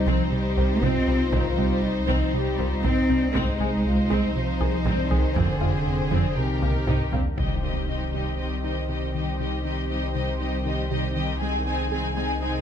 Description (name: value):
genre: cinematic, hybrid orchestral and electronic film score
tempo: 119 BPM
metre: 4/4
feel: straight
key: C minor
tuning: A4 = 440 Hz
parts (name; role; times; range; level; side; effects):
- warm symphonic violin section; melody; 0.0-7.2 s; Bb4 to C5; -33 LUFS; left 7 dB; none
- warm symphonic violin section; second line; 0.0-12.6 s; Eb4 to Ab5; -33 LUFS; left 2 dB; none
- warm French horn section; sustained chords; 0.0-12.6 s; Ab3 to G4; -35 LUFS; left 8 dB; none
- warm analog pad; sustained chords; 0.0-12.6 s; C3 to C5; -32 LUFS; right 1 dB; lush chorus
- dark chamber cello section; bass; 0.0-12.6 s; C2 to C4; -28 LUFS; right 2 dB; none
- punchy sub bass; bass; 0.0-12.6 s; F1 to C2; -29 LUFS; equal; none
- warm symphonic viola section; accompaniment; 0.1-12.6 s; Eb3 to Eb4; -34 LUFS; equal; none
- tight sequenced synth; arpeggios; 0.1-12.6 s; C3 to Ab4; -33 LUFS; left 1 dB; chorus, phaser, digital delay
- rubbery square bass; riff; 0.1-7.3 s; C2 to C3; -29 LUFS; right 2 dB; none
- warm symphonic double bass section; bass; 0.1-7.2 s; C2 to F2; -29 LUFS; right 3 dB; none
- taiko ensemble; drums; 0.8-7.4 s; none; -31 LUFS; equal; none
- impact; sound effects; 7.4-9.4 s; none; -32 LUFS; left 1 dB; none
room: light reverb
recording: close, detailed microphones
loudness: -22 LUFS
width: side -9 dB against mid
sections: 0.0-7.4 A section; 7.4-12.6 B section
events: drum fill 6.6-7.4; impact 7.4-9.4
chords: 0.0 Cm; 3.3 Ab/C; 5.4 Fm; 6.4 Cm7; 7.4 Cm; 11.4 Ab/C